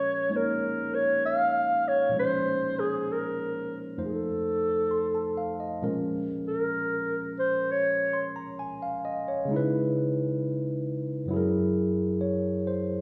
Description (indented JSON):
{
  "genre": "jazz",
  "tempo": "66 BPM",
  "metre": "4/4",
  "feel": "swing 66% on 8ths",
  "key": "Bb minor",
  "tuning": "A4 = 441 Hz",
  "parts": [
    { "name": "mellow clarinet", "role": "melody", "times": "0.0-8.3 s", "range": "Ab4 to F5", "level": "-29 LUFS", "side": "equal", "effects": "none" },
    { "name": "barky tine electric piano", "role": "accompaniment", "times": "0.0-13.0 s", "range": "F2 to C6", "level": "-31 LUFS", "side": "equal", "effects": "none" }
  ],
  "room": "wet recital hall reverb, RT60 1.4 s",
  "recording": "recorded in a church or concert hall",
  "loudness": "-28 LUFS",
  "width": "mono",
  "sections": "0.0-5.8 A section; 5.8-13.0 B section",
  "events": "clarinet solo 5.8-13.0",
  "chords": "0.0 Bbm9; 4.0 F7; 5.8 Bbm7; 9.5 Dbm7; 11.3 Gb9",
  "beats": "0.31 1.23 | 2.15 3.06 3.98 4.91 | 5.83 6.75 7.67 8.59 | 9.50 10.40 11.31 12.22"
}